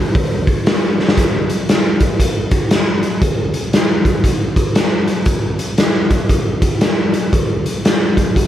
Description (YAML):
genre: rock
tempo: 117 BPM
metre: 4/4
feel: swing 63% on 8ths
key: none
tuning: none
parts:
  - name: raw garage drum kit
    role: drums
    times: 0.1-8.5 s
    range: hi-hat, kick drum, snare drum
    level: -13 LUFS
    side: equal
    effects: none
room: light reverb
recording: none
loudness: -13 LUFS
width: side -11 dB against mid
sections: 0.0-1.2 A section; 1.2-8.5 B section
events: drum fill 0.9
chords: none